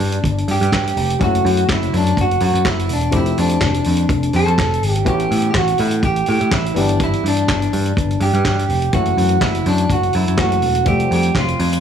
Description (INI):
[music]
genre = disco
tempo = 124 BPM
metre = 4/4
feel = straight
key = E dorian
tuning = A4 = 438 Hz
[part]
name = electric guitar at the edge of break-up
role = melody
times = 0.0-11.8 s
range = D4 to A4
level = -19 LUFS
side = right 2 dB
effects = none
[part]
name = mellow clav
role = accompaniment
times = 0.0-11.8 s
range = E3 to E5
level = -24 LUFS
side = left 6 dB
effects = none
[part]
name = picked electric bass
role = bass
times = 0.0-11.8 s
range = E1 to A2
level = -18 LUFS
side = equal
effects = none
[part]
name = warm soul drum kit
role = drums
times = 0.0-11.8 s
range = handclaps, hi-hat, kick drum, snare drum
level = -22 LUFS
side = equal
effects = none
[sound]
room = light reverb, small room ambience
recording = none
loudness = -14 LUFS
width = side -8 dB against mid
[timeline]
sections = 0.0-11.8 A section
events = none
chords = 0.0 Em7/G; 1.2 F#m7; 3.1 Fmaj9; 5.1 A7; 6.8 Em7/G; 8.9 F#m7; 10.9 Fmaj9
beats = 0.23 0.72 | 1.20 1.68 2.17 2.65 | 3.13 3.62 4.10 4.58 | 5.07 5.55 6.03 6.52 | 7.00 7.48 7.97 8.45 | 8.93 9.42 9.90 10.38 | 10.86 11.34